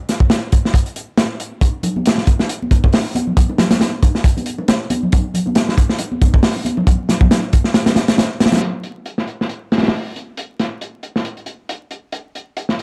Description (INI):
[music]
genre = breakbeat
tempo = 137 BPM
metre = 4/4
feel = swing 56% on 16ths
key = none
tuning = none
[part]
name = crunchy breakbeat drum kit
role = drums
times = 0.1-12.8 s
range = hi-hat, kick drum, snare drum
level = -17 LUFS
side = equal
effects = low-pass filter on kick, low-pass filter on hats, low-pass filter on snare, low-pass filter on room
[part]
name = bongos and congas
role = percussion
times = 1.6-8.6 s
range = none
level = -24 LUFS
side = equal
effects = none
[sound]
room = light reverb, small room ambience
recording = dark, warm production, vinyl crackle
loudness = -17 LUFS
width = mono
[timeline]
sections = 0.0-8.6 A section; 8.6-12.8 B section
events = kick drops out 7.8-8.6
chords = none